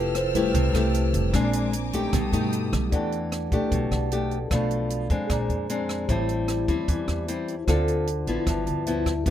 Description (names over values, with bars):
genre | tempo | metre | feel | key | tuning
bossa nova | 152 BPM | 4/4 | straight | E minor | A4 = 442 Hz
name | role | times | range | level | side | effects
mellow tine electric piano | accompaniment | 0.0-9.3 s | G3 to B5 | -30 LUFS | right 1 dB | medium stereo tremolo
nylon-string guitar | accompaniment | 0.0-9.3 s | G2 to A4 | -26 LUFS | left 2 dB | none
warm studio string section | sustained chords | 0.0-2.9 s | A4 to F6 | -35 LUFS | left 3 dB | none
upright bass | bass | 0.0-9.3 s | F1 to G2 | -27 LUFS | equal | none
compact cocktail drum kit | drums | 0.1-9.3 s | hi-hat, kick drum, rim click | -29 LUFS | equal | none
room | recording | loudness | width
little or no reverb | close, detailed microphones | -22 LUFS | side -11 dB against mid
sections
0.0-2.9 A section; 2.9-9.3 B section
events
tine electric piano solo 0.0-2.9; tine electric piano fill 8.5-9.3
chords
0.0 Fmaj9; 1.3 Bb9; 2.1 Baug7; 2.9 Em11; 4.5 Bm7b5; 5.3 A#9; 6.1 Am7; 7.7 Dm7; 8.5 G13